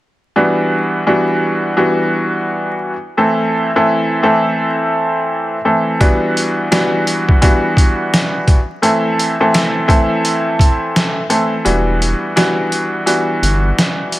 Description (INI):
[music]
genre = hip hop, boom-bap hip-hop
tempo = 85 BPM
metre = 4/4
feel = swing 62% on 16ths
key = E minor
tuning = A4 = 442 Hz
[part]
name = bright upright piano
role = accompaniment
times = 0.4-14.2 s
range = E3 to A4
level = -14 LUFS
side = equal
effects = cassette tape, high-pass filter, low-pass filter
[part]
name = trip hop sampler-style drum kit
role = drums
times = 6.0-14.2 s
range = hi-hat, kick drum, snare drum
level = -14 LUFS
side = equal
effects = none
[part]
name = round analog bass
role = bass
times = 11.7-13.7 s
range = E1 to G1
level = -16 LUFS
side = equal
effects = none
[sound]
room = light reverb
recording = vinyl crackle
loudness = -12 LUFS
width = side -16 dB against mid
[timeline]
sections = 0.4-11.7 A section; 11.7-14.2 B section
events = kick muted 11.7-14.2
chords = 0.4 Em7; 3.2 Am; 6.0 Em7; 8.8 Am; 11.7 Em7